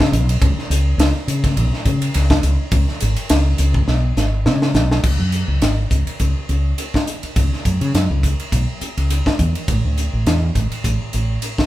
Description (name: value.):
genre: electric jazz fusion.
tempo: 104 BPM.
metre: 4/4.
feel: swing 55% on 16ths.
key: C# minor from 5.0 s.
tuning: A4 = 438 Hz.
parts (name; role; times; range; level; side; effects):
woody fretless electric bass; bass; 0.0-11.4 s; G#1 to C#3; -17 LUFS; equal; none.
crisp fusion drum kit; drums; 0.0-11.7 s; crash cymbal, hi-hat, kick drum, ride cymbal, snare drum; -20 LUFS; equal; none.
room: moderate large studio reverb, RT60 1.0 s.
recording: band playing live in one room.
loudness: -15 LUFS.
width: side -15 dB against mid.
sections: 0.0-5.0 A section; 5.0-11.7 B section.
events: drum fill 3.9-5.0.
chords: none.